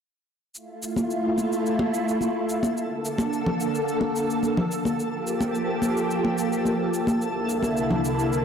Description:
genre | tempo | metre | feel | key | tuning
sunset chillout | 108 BPM | 4/4 | straight | F major | A4 = 440 Hz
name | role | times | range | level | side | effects
soft string machine | sustained chords | 0.5-8.4 s | C2 to A4 | -25 LUFS | equal | phaser, ensemble chorus
twinkling granular texture | texture | 1.3-8.4 s | A4 to A5 | -33 LUFS | right 2 dB | built-in reverb
shaker | drums | 0.6-8.4 s | none | -38 LUFS | equal | none
congas | percussion | 1.0-8.0 s | none | -28 LUFS | equal | none
room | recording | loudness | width
wet lush hall reverb, RT60 2.4 s | blown-out, overdriven recording, overdrive | -22 LUFS | side -7 dB against mid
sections
0.5-8.4 A section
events
none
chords
0.5 Fmaj7; 2.8 Bbmaj7; 5.0 Gm7; 7.2 C9

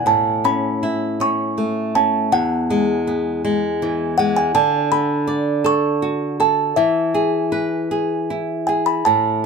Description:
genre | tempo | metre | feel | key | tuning
children's music, lullaby | 80 BPM | 3/4 | rubato | A major | A4 = 439 Hz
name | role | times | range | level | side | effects
music box | melody | 0.0-9.5 s | E5 to C#6 | -19 LUFS | right 2 dB | none
flamenco guitar | accompaniment | 0.0-9.5 s | E2 to D5 | -19 LUFS | equal | none
room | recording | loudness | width
moderate small room ambience, RT60 0.5 s | band playing live in one room | -17 LUFS | side -5 dB against mid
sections
0.1-9.5 A section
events
none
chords
0.1 A; 2.3 Eadd9; 4.5 D; 6.8 E

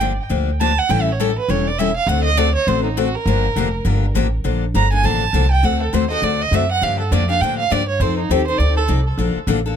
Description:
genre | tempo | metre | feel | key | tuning
acoustic string swing (jazz manouche) | 203 BPM | 4/4 | swing 59% on 8ths | G minor, Bb major from 4.4 s | A4 = 440 Hz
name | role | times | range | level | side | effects
picked steel-string acoustic guitar | accompaniment | 0.0-9.8 s | D3 to A4 | -21 LUFS | left 8 dB | none
upright bass | bass | 0.0-9.8 s | E1 to A2 | -19 LUFS | equal | none
warm violin | melody | 0.6-8.8 s | Eb4 to Bb5 | -20 LUFS | right 5 dB | tape echo
room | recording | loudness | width
little or no reverb | close, detailed microphones | -15 LUFS | side -8 dB against mid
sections
0.0-4.4 A section; 4.4-9.8 A section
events
violin solo 0.0-9.8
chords
0.0 Gm7; 0.9 A7; 2.1 D7; 3.3 Gm7; 4.4 Bbmaj7; 5.6 D7; 6.8 Gm7; 8.0 F7; 9.2 Bbmaj7

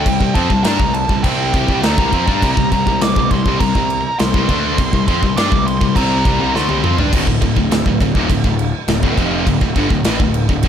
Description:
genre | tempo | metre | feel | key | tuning
heavy metal | 102 BPM | 4/4 | straight | D minor | A4 = 440 Hz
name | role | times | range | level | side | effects
high-gain lead guitar | melody | 0.0-7.0 s | G5 to D6 | -20 LUFS | right 2 dB | distortion, tape echo
heavy high-gain guitar | riff | 0.0-10.7 s | D2 to D4 | -22 LUFS | right 10 dB | distortion
high-gain distorted guitar | riff | 0.0-10.7 s | D2 to D4 | -22 LUFS | left 13 dB | distortion
thick fuzz guitar | riff | 0.0-10.7 s | D2 to D4 | -23 LUFS | left 1 dB | none
fuzz picked electric bass | bass | 0.0-10.7 s | D1 to G2 | -21 LUFS | equal | overdrive
big rock drum kit | drums | 0.1-10.7 s | crash cymbal, kick drum, snare drum, toms | -18 LUFS | equal | none
room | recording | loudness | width
small room ambience | dark, warm production | -13 LUFS | side -9 dB against mid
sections
0.0-7.1 A section; 7.1-10.7 B section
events
lead electric guitar solo 0.0-7.1; drum fill 6.5-7.1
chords
0.0 C5; 7.1 Dm

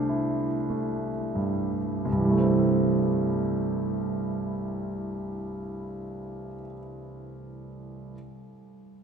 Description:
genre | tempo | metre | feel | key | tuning
classical, impressionist solo piano | 31 BPM (dotted quarters) | 6/8 | rubato | C major | A4 = 442 Hz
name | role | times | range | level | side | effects
clear concert grand piano | solo | 0.0-8.2 s | C2 to C5 | -26 LUFS | right 2 dB | none
room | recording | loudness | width
wet cathedral reverb, RT60 4.7 s | dark, warm production | -25 LUFS | side -6 dB against mid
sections
0.0-2.1 A section; 2.1-5.9 B section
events
slowing down 0.0-2.1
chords
0.0 C69; 2.1 C6

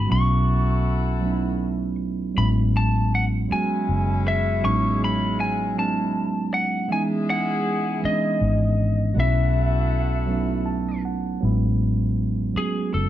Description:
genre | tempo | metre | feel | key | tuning
slow six-eight R&B | 53 BPM (dotted quarters) | 6/8 | straight | unclear | A4 = 440 Hz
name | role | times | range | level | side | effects
lightly driven lead guitar | melody | 0.0-13.1 s | G#4 to C#6 | -26 LUFS | left 2 dB | none
mellow tine electric piano | accompaniment | 0.0-13.1 s | E3 to A5 | -25 LUFS | right 4 dB | none
vintage muted fingered electric bass | bass | 0.0-13.1 s | F#1 to C#2 | -22 LUFS | left 1 dB | none
warm horn section | stabs | 0.1-11.0 s | G#3 to A4 | -32 LUFS | left 4 dB | none
room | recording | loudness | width
moderate large studio reverb, RT60 1.1 s | band playing live in one room | -20 LUFS | side -12 dB against mid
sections
0.0-11.4 A section; 11.4-13.1 B section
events
tine electric piano fill 10.3-11.4; lead electric guitar solo 11.4-13.1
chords
0.1 B7sus4; 2.4 Amaj13; 6.9 C#m9; 9.2 B7sus4; 11.4 Amaj13

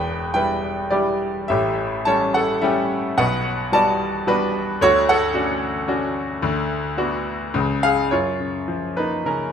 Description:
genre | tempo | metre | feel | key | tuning
classical, lyrical solo piano | 109 BPM | 3/4 | uneven beats, rubato | D major | A4 = 440 Hz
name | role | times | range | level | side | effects
bright grand piano | solo | 0.0-9.5 s | E1 to A5 | -18 LUFS | equal | none
room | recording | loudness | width
moderate recital hall reverb, RT60 1.6 s | minimal, uncompressed stereo recording | -18 LUFS | side -8 dB against mid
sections
0.0-8.1 A section; 8.1-9.5 B section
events
none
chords
0.0 Em7; 1.5 A7; 3.2 Gmaj7/B; 4.8 Dmaj7; 6.4 D6; 7.5 C#; 8.1 F#maj7

